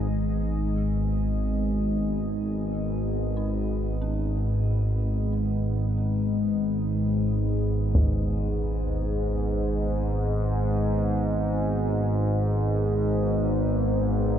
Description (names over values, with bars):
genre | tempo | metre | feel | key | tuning
dark ambient drone | 46 BPM | 4/4 | straight | G# minor | A4 = 440 Hz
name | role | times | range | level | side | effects
deep dark ambient pad | sustained chords | 0.0-14.4 s | B3 to D#5 | -34 LUFS | right 1 dB | chorus, built-in reverb, shimmer reverb
dark detuned synth bell | arpeggios | 0.0-14.4 s | C#4 to G#4 | -49 LUFS | equal | none
analog drone | drone | 0.0-14.4 s | G#1 to G#2 | -24 LUFS | equal | chorus
solo taiko drums | percussion | 7.9-8.2 s | none | -28 LUFS | equal | none
room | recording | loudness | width
wet cathedral reverb, RT60 5.4 s | none | -23 LUFS | side -9 dB against mid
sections
0.1-14.4 A section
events
fade-in on ambient pad 0.1-14.4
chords
0.1 G#m